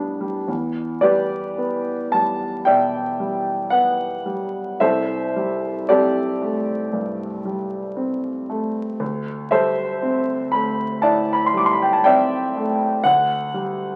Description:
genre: classical, impressionist solo piano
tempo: 52-61 BPM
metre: 4/4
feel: rubato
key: E minor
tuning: A4 = 436 Hz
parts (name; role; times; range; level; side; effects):
- clear concert grand piano; solo; 0.0-14.0 s; C2 to E6; -21 LUFS; equal; none
room: moderate large studio reverb, RT60 1.0 s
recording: very old 78 rpm record, vinyl crackle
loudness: -21 LUFS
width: mono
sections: 0.5-14.0 A section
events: none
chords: 0.5 Em7; 4.8 C69; 9.0 D9sus4; 13.0 Em7/D (rootless)

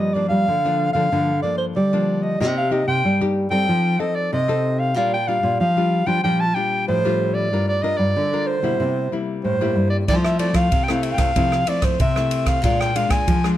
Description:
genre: samba and choro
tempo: 94 BPM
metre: 4/4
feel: straight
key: G minor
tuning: A4 = 440 Hz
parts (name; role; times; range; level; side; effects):
- dark clarinet; melody; 0.0-13.5 s; C5 to A5; -22 LUFS; right 1 dB; none
- nylon-string guitar; accompaniment; 0.0-13.6 s; G2 to Bb4; -24 LUFS; left 4 dB; none
- nylon-string guitar; bass; 0.0-13.6 s; G2 to G3; -22 LUFS; equal; none
- open jazz drum kit; drums; 10.1-13.6 s; kick drum, ride cymbal, rim click; -22 LUFS; right 1 dB; none
room: light reverb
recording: none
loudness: -17 LUFS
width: side -13 dB against mid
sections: 0.0-13.6 A section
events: none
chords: 0.0 Gm7; 2.4 Cm7; 3.7 F7; 5.0 Bb6; 7.5 Gm7; 8.8 C7; 10.1 Fmaj7; 12.6 Bb7

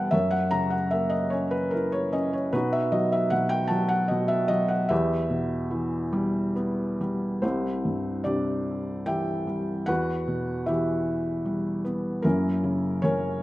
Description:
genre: classical, lyrical solo piano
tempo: 75 BPM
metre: 3/4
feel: rubato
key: unclear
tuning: A4 = 440 Hz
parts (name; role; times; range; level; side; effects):
- felt-muted upright piano; solo; 0.0-13.4 s; C2 to A#5; -24 LUFS; equal; none
room: light reverb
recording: close, detailed microphones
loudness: -24 LUFS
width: side -16 dB against mid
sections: 0.0-7.4 A section; 7.4-13.4 B section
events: none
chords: 0.1 F#7; 2.5 B; 4.9 Em; 7.4 Cadd9; 9.9 Em; 12.2 F#7

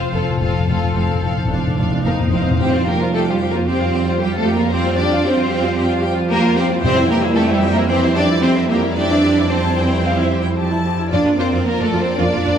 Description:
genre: cinematic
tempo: 112 BPM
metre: 4/4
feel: straight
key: unclear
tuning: A4 = 440 Hz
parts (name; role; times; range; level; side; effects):
- rich symphonic violin section; melody; 0.0-12.6 s; G4 to F5; -24 LUFS; left 3 dB; none
- rich symphonic violin section; second line; 0.0-12.6 s; A4 to A5; -25 LUFS; left 3 dB; none
- clear symphonic viola section; accompaniment; 0.0-12.5 s; C4 to G4; -25 LUFS; equal; none
- concert harp; arpeggios; 0.0-12.6 s; F2 to C5; -28 LUFS; left 6 dB; none
- timpani; percussion; 0.0-3.4, 6.8-7.6 s; F2; -22 LUFS; left 1 dB; none
- rich symphonic cello section; bass; 0.1-12.6 s; F2 to D4; -20 LUFS; right 2 dB; none
- rich symphonic double bass section; bass; 0.1-12.5 s; F1 to F2; -22 LUFS; right 2 dB; none
- dark trombone section; sustained chords; 2.6-12.6 s; E3 to Bb3; -23 LUFS; right 3 dB; none
room: moderate scoring stage reverb, RT60 1.5 s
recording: none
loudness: -15 LUFS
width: side -8 dB against mid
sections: 0.0-2.6 A section; 2.6-12.6 B section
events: timpani fill 0.0-2.6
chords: 0.0 F; 2.6 Fsus2; 11.1 Bb/F

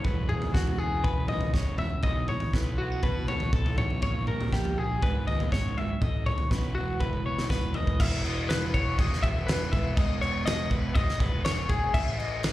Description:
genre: math rock and midwest emo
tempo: 121 BPM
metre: 4/4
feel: straight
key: E major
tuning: A4 = 440 Hz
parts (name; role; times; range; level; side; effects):
- twelve-string electric guitar; accompaniment; 0.0-10.0 s; E2 to E4; -37 LUFS; right 5 dB; plate reverb, slapback echo
- twelve-string electric guitar; arpeggios; 0.0-12.5 s; F#4 to E5; -32 LUFS; left 2 dB; spring reverb, plate reverb, slapback echo
- fuzz picked electric bass; bass; 0.0-12.5 s; E1 to B2; -31 LUFS; equal; overdrive
- loose indie drum kit; drums; 0.0-12.5 s; crash cymbal, kick drum, snare drum, toms; -28 LUFS; equal; none
room: light reverb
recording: live gig heard through the venue's PA, club reverb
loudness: -25 LUFS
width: side -15 dB against mid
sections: 0.0-8.0 A section; 8.0-12.5 B section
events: drum fill 7.0-8.0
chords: 0.0 E69; 2.0 B9sus4; 4.0 A#m6; 5.0 G#m7; 6.0 A; 6.8 Esus2; 8.0 Emaj7(no3); 11.9 Asus2

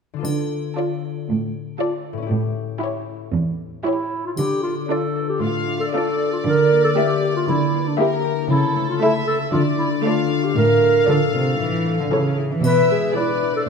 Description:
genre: cinematic, playful, whimsical film cue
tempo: 116 BPM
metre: 4/4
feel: straight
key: D minor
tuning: A4 = 440 Hz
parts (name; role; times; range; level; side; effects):
- concert harp; arpeggios; 0.1-13.7 s; A2 to A4; -25 LUFS; left 11 dB; none
- warm studio cello section; bass; 0.2-13.0 s; E2 to E3; -22 LUFS; right 4 dB; none
- triangle; percussion; 0.2-1.2, 4.4-5.4, 12.6-13.6 s; none; -40 LUFS; left 4 dB; none
- warm chamber violin section; melody; 0.8-13.6 s; C#5 to E5; -28 LUFS; left 3 dB; none
- clear studio violin section; second line; 0.8-13.7 s; G4 to F5; -28 LUFS; left 2 dB; none
- warm studio viola section; accompaniment; 0.8-13.5 s; E3 to A4; -25 LUFS; right 2 dB; none
- mellow clarinet; second line; 3.9-13.6 s; D4 to B4; -20 LUFS; right 1 dB; none
room: moderate scoring stage reverb, RT60 1.8 s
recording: none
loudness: -18 LUFS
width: side -5 dB against mid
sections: 0.3-4.4 A section; 4.4-13.7 B section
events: none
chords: 0.3 Dm; 2.3 A7; 4.4 Dm; 6.4 Em7b5/D; 8.5 A/C#; 9.5 Dm; 10.6 Dm/A; 11.6 A; 12.6 E7/B

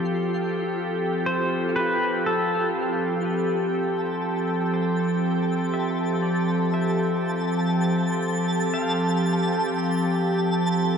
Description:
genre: ambient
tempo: 60 BPM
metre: 4/4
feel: straight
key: F major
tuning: A4 = 439 Hz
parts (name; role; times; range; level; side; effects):
- evolving wavetable pad; sustained chords; 0.0-11.0 s; F3 to G5; -23 LUFS; equal; chorus, built-in reverb
- analog drone; drone; 1.7-11.0 s; none; barely audible; none; none
- twinkling granular texture; texture; 0.0-11.0 s; F4 to A5; -32 LUFS; equal; built-in reverb
- pedal steel guitar; melody; 1.3-10.2 s; A4 to F5; -30 LUFS; equal; ping-pong delay
room: wet cathedral reverb, RT60 5.4 s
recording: none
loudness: -22 LUFS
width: side -7 dB against mid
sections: 0.0-2.7 A section; 2.7-11.0 B section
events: fade-in on pedal steel guitar 2.7-11.0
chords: 0.0 Fadd9

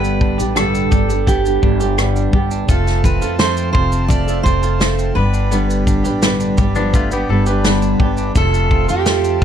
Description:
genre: acoustic pop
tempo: 85 BPM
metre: 4/4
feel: straight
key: unclear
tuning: A4 = 440 Hz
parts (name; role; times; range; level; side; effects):
- fingerpicked steel-string acoustic guitar; melody; 0.0-9.4 s; G4 to D5; -20 LUFS; right 4 dB; ping-pong delay
- nylon-string guitar; accompaniment; 0.0-9.4 s; G2 to B4; -19 LUFS; equal; double-tracked left and right
- direct-recorded clean electric guitar; arpeggios; 0.0-9.4 s; A3 to G4; -27 LUFS; right 7 dB; none
- upright bass; bass; 0.0-9.4 s; F1 to F2; -19 LUFS; left 1 dB; none
- natural country drum kit; drums; 0.0-9.4 s; kick drum, rim click, shaker, snare drum; -17 LUFS; equal; none
- hand-pumped harmonium; sustained chords; 2.7-9.4 s; G4 to C6; -29 LUFS; equal; none
- pedal steel guitar; second line; 6.8-8.3 s; F3 to B4; -23 LUFS; left 7 dB; none
room: light reverb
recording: dark, warm production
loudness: -13 LUFS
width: side -9 dB against mid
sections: 0.0-9.4 A section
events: none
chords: 0.0 G; 2.7 F; 5.2 G; 8.4 F

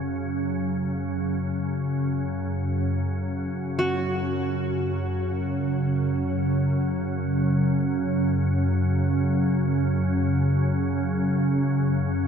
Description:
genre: world meditative, free-time meditation music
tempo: free time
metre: none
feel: none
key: unclear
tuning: A4 = 440 Hz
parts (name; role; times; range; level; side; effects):
- soft additive organ-like pad; drone; 0.0-12.3 s; F#2 to C#3; -22 LUFS; equal; ensemble chorus, built-in reverb
- qanun; texture; 3.8-11.4 s; F#4; -30 LUFS; equal; none
room: wet huge ambient reverb, RT60 6.9 s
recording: dark, warm production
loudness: -22 LUFS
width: side -7 dB against mid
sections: 0.0-12.3 A section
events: none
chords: none

